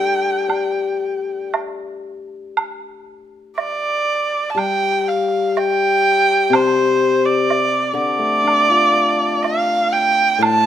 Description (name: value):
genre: chinese traditional, Chinese chamber ensemble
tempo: 61 BPM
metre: 4/4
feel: rubato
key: G shang mode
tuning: A4 = 440 Hz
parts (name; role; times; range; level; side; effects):
- dark erhu; melody; 0.0-10.7 s; C5 to A5; -17 LUFS; right 2 dB; none
- hammered dulcimer; accompaniment; 0.0-10.7 s; A2 to D5; -20 LUFS; left 5 dB; none
- woodblock; percussion; 0.5-10.6 s; none; -22 LUFS; right 5 dB; none
room: light reverb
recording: close, detailed microphones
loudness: -15 LUFS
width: side -10 dB against mid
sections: 0.0-2.6 A section; 2.6-10.7 B section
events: none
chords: none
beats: 0.49 1.53 | 2.57 3.57 4.57 5.57 | 6.54 7.50 8.46 9.44 | 10.42